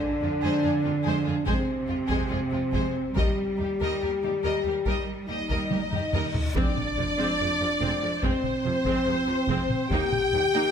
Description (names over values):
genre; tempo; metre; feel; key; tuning
cinematic, epic orchestral film score; 71 BPM; 4/4; straight; F dorian; A4 = 441 Hz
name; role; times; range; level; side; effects
dark French horn section; sustained chords; 0.0-10.7 s; C4 to G4; -28 LUFS; left 1 dB; none
rich symphonic cello section; bass; 0.0-10.6 s; Eb2 to G3; -33 LUFS; right 3 dB; none
clear symphonic violin section; melody; 0.2-10.7 s; F4 to G5; -33 LUFS; left 2 dB; none
warm symphonic violin section; second line; 0.2-10.7 s; C4 to G5; -33 LUFS; left 1 dB; none
rich symphonic viola section; accompaniment; 0.2-10.7 s; C3 to Eb4; -35 LUFS; right 2 dB; none
warm symphonic double bass section; bass; 0.2-10.4 s; F1 to F2; -34 LUFS; right 4 dB; none
taiko ensemble; drums; 1.5-10.7 s; none; -30 LUFS; equal; none
reverse cymbal and impact; sound effects; 6.1-9.9 s; none; -40 LUFS; equal; none
room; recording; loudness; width
light reverb; close, detailed microphones; -23 LUFS; side -7 dB against mid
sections
0.0-6.6 A section; 6.6-10.7 A section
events
drum fill 5.7-6.6; reverse cymbal 6.1-6.6; impact 6.6-9.9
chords
0.0 Fm; 3.2 Eb; 6.6 Fm; 9.9 Eb